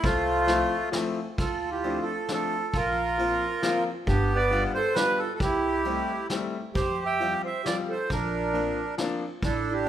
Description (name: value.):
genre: musette waltz.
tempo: 134 BPM.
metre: 3/4.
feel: swing 55% on 8ths.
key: unclear.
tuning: A4 = 439 Hz.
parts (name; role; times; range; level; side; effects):
accordion; melody; 0.0-9.9 s; A3 to G5; -26 LUFS; right 2 dB; none.
warm clarinet; second line; 0.0-9.9 s; D4 to E5; -34 LUFS; right 5 dB; none.
upright bass; bass; 0.0-9.9 s; G1 to F2; -32 LUFS; equal; none.
vintage brush drum kit; drums; 0.0-9.9 s; kick drum, ride cymbal, snare drum; -33 LUFS; equal; none.
bright upright piano; accompaniment; 0.5-9.9 s; E3 to F4; -32 LUFS; left 4 dB; none.
room: moderate recital hall reverb, RT60 1.7 s.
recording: minimal, uncompressed stereo recording.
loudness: -24 LUFS.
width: side -10 dB against mid.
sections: 0.0-1.4 A section; 1.4-9.9 B section.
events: none.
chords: 0.0 Fmaj7; 1.4 Dm7; 2.7 Bbsus2; 4.1 G7; 5.4 C6; 6.8 Fsus2; 8.1 Bbadd9.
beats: | 0.04 0.49 0.94 | 1.39 1.84 2.29 | 2.74 3.18 3.63 | 4.07 4.51 4.96 | 5.40 5.85 6.30 | 6.76 7.21 7.66 | 8.10 8.55 8.98 | 9.42 9.86.